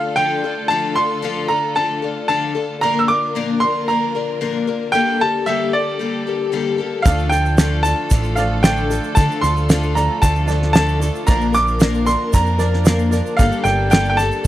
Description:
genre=indie folk with a building arrangement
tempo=114 BPM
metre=4/4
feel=straight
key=D minor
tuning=A4 = 440 Hz
part: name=bright upright piano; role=melody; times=0.0-14.5 s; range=D5 to E6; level=-19 LUFS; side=right 1 dB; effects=none
part: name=picked twelve-string acoustic guitar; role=accompaniment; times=0.0-14.5 s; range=G2 to Bb4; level=-22 LUFS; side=left 6 dB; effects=none
part: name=warm studio string section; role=sustained chords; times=0.0-14.5 s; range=D3 to Bb4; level=-28 LUFS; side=right 1 dB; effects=none
part: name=felt-muted upright piano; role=accompaniment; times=7.1-14.5 s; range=G1 to D5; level=-27 LUFS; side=right 8 dB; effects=none
part: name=fingered electric bass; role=bass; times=7.1-14.5 s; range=G1 to D3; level=-19 LUFS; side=equal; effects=none
part: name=cloth-damped thuddy drum kit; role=drums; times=7.1-14.5 s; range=kick drum, snare drum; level=-15 LUFS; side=right 1 dB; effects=none
part: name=tube shaker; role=percussion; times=7.1-14.5 s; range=none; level=-34 LUFS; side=right 9 dB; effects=none
room=little or no reverb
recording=dry, close 1970s-style studio recording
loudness=-15 LUFS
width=side -13 dB against mid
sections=0.0-14.5 A section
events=none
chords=0.0 Dm; 2.8 Bb; 4.9 Gmadd9; 7.1 Dm; 11.3 Bb; 13.4 Gmadd9

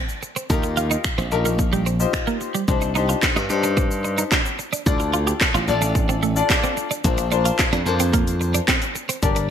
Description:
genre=dance-pop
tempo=110 BPM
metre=4/4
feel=straight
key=unclear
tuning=A4 = 437 Hz
part: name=twelve-string electric guitar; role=riff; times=0.0-9.4 s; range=G3 to G4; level=-26 LUFS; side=right 6 dB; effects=wide subtle chorus
part: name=house drum kit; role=drums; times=0.1-9.5 s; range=finger snaps, handclaps, hi-hat, kick drum, shaker, snare drum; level=-22 LUFS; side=equal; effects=gated reverb
part: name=clear grand piano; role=accompaniment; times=0.5-9.5 s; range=D4 to D5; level=-25 LUFS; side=left 6 dB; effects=lush chorus, sidechain pumping
part: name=glassy slap bass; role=bass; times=0.5-9.5 s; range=G1 to G2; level=-22 LUFS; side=equal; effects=sidechain pumping
room=light reverb, digital ambience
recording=bright 1980s-style digital production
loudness=-18 LUFS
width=side -8 dB against mid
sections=0.0-9.5 A section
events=none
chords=0.5 Ebadd9; 2.7 Cmadd9; 4.9 Dm; 7.0 Bbadd9

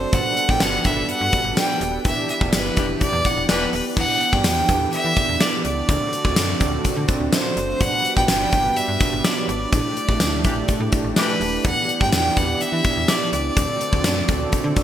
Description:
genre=1980s-style pop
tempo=125 BPM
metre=4/4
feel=straight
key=E minor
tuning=A4 = 439 Hz
part: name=clear fiddle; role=melody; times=0.0-14.7 s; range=B4 to G5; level=-22 LUFS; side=equal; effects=digital delay
part: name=bell-like tine electric piano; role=accompaniment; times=0.0-14.8 s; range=A3 to E5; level=-26 LUFS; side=right 4 dB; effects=analog chorus
part: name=brassy analog pad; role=sustained chords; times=0.0-14.8 s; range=D3 to B4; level=-31 LUFS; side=equal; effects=chorus
part: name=slap-like FM bass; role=bass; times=0.0-14.7 s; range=D#1 to E3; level=-27 LUFS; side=equal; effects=none
part: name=gated 80s drum kit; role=drums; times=0.1-14.8 s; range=crash cymbal, hi-hat, kick drum, snare drum, tambourine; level=-21 LUFS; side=left 1 dB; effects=gated reverb
part: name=clear horn section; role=stabs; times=2.8-3.6, 10.4-11.3 s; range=E3 to G4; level=-30 LUFS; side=left 3 dB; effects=none
room=moderate lush hall reverb, RT60 2.4 s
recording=bright 1980s-style digital production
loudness=-18 LUFS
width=side -10 dB against mid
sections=0.0-4.0 A section; 4.0-14.8 A section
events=band accent 2.0-4.0, 9.7-11.6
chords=0.1 Gmaj7; 2.0 Em7; 5.9 D7; 7.8 Gmaj7; 9.7 A7sus4; 11.6 Em7; 13.6 D7

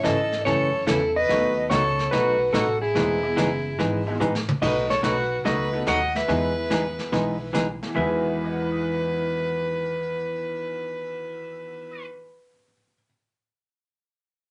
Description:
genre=country, western swing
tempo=144 BPM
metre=4/4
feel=swing 67% on 8ths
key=E major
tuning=A4 = 440 Hz
part: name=clean lap steel guitar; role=melody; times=0.0-12.1 s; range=G#4 to F#5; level=-27 LUFS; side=equal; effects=none
part: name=tack piano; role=accompaniment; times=0.0-13.0 s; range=E2 to B6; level=-38 LUFS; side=equal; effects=none
part: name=vintage hollow-body jazz guitar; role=accompaniment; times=0.0-12.1 s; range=B2 to A4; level=-29 LUFS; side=equal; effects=none
part: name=upright bass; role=bass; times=0.0-12.1 s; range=E1 to G#2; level=-35 LUFS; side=equal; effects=none
part: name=vintage brush drum kit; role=drums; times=0.0-8.3 s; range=brushed snare drum, crash cymbal, hi-hat, kick drum, snare drum, toms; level=-33 LUFS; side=equal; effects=none
part: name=clear fiddle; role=second line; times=0.1-12.1 s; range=E4 to D#5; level=-32 LUFS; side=equal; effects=none
room=wet club reverb, RT60 0.6 s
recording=nothing above 10.7 kHz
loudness=-24 LUFS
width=mono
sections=0.0-4.6 A section; 4.6-8.0 B section; 8.0-11.3 C section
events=drum fill 4.2-4.6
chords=0.0 A; 1.3 B7; 3.0 Emaj7; 4.6 B7; 6.3 Emaj7

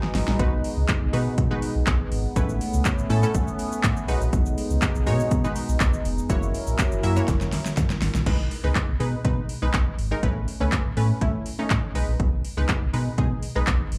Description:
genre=dance-pop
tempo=122 BPM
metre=4/4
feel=straight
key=B major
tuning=A4 = 440 Hz
part: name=sweeping resonant pad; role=sustained chords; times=0.0-8.2 s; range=F#3 to B4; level=-33 LUFS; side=equal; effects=chorus, sidechain pumping, plate reverb
part: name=deep house drum kit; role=drums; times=0.0-14.0 s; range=crash cymbal, handclaps, hi-hat, kick drum, shaker, snare drum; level=-27 LUFS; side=equal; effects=overdrive
part: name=sub bass with octave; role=bass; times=0.1-14.0 s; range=E#1 to B2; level=-26 LUFS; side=equal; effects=sidechain pumping
part: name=punchy chord stab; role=accompaniment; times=0.4-13.9 s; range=G#3 to E5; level=-32 LUFS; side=equal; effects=chorus, sidechain pumping, plate reverb, slapback echo
room=light reverb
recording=live gig heard through the venue's PA, club reverb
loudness=-24 LUFS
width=mono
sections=0.0-8.3 A section; 8.3-14.0 B section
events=drum fill 0.0-0.4, 7.3-8.3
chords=0.4 B6; 2.4 Aadd9; 4.1 B6; 6.3 F#7; 8.3 B6; 10.2 Aadd9; 12.0 B6

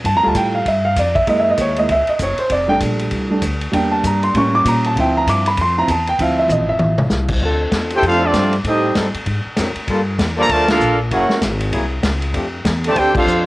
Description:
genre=jazz, big band swing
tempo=195 BPM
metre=4/4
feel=swing 61% on 8ths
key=D minor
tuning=A4 = 439 Hz
part: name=upright bass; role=bass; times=0.0-13.5 s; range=F1 to Bb2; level=-21 LUFS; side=left 1 dB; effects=none
part: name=vintage drum kit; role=drums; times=0.0-13.4 s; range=crash cymbal, hi-hat, kick drum, ride cymbal, snare drum, toms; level=-22 LUFS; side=left 1 dB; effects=cassette tape
part: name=warm upright piano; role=accompaniment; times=0.1-7.4 s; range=F3 to D6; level=-16 LUFS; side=right 1 dB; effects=cassette tape
part: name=bright trombone section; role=sustained chords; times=7.4-13.2 s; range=F3 to Bb4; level=-24 LUFS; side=left 1 dB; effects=cassette tape
part: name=clear trombone section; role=second line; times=7.9-13.4 s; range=C3 to G4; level=-19 LUFS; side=right 2 dB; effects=cassette tape
part: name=warm trumpet section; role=melody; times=8.0-13.4 s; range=C4 to Bb5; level=-16 LUFS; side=equal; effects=cassette tape
room=light reverb, small room ambience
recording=home recording on cassette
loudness=-14 LUFS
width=side -19 dB against mid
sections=0.0-7.4 A section; 7.4-13.5 B section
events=upright piano solo 0.0-7.4; drum fill 6.5-7.1; band accent 10.6, 13.1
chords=0.0 Gsus2; 1.3 F#9; 2.5 F69; 3.7 Em7b5; 4.3 A7b9; 5.0 Dm7; 8.6 Am7b5; 9.3 G#7#11; 9.9 Gm9; 11.1 F#9; 12.3 F69

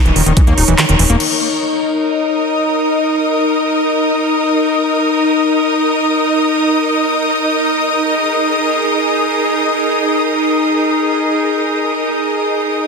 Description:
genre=psychedelic trance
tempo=free time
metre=none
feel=none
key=unclear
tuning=A4 = 440 Hz
part: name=evolving wavetable pad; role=sustained chords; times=0.0-12.9 s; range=Eb4 to Eb5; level=-16 LUFS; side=left 1 dB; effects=chorus, built-in reverb, sidechain pumping
part: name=rich symphonic string section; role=texture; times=0.0-12.9 s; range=Eb4 to Eb6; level=-16 LUFS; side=equal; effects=sidechain pumping
part: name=overdriven acid bass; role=riff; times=0.1-1.2 s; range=Eb3 to Eb4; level=-19 LUFS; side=equal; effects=distortion, auto-pan, sidechain pumping, tape echo
part: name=fat analog bass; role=bass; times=0.1-1.2 s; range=Eb1 to Eb2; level=-14 LUFS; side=equal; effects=none
part: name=big-room dance drum kit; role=drums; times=0.1-1.3 s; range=crash cymbal, handclaps, hi-hat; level=-17 LUFS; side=equal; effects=overdrive
part: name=electronic kick drum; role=drums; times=0.4-0.5 s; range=none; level=-11 LUFS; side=equal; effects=overdrive
room=wet lush hall reverb, RT60 2.1 s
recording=dense, heavily limited modern master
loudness=-12 LUFS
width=side -4 dB against mid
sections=0.0-1.2 A section; 1.2-12.9 B section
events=kick drops out 0.8-1.2; band accent 0.8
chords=0.0 Eb5

